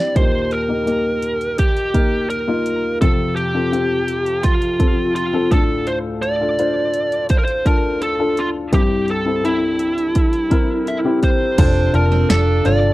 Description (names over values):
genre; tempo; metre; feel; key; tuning
piano-driven pop; 84 BPM; 4/4; straight; F major; A4 = 439 Hz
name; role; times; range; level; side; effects
biting lead guitar; melody; 0.0-12.9 s; E4 to E5; -20 LUFS; right 1 dB; overdrive
dark upright piano; accompaniment; 0.0-12.9 s; C2 to A5; -20 LUFS; left 3 dB; none
house drum kit; drums; 0.2-12.8 s; crash cymbal, hi-hat, kick drum, snare drum; -17 LUFS; right 1 dB; none
picked steel-string acoustic guitar; riff; 11.6-12.8 s; C4 to F4; -24 LUFS; right 6 dB; none
vintage muted picked electric bass; bass; 11.6-12.9 s; F1 to G1; -16 LUFS; right 1 dB; none
room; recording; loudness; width
little or no reverb; dry, close 1970s-style studio recording; -15 LUFS; side -17 dB against mid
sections
0.0-11.6 A section; 11.6-12.9 B section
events
drum fill 0.0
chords
0.2 Eb; 3.0 F; 5.5 Dm; 8.7 C; 11.6 F6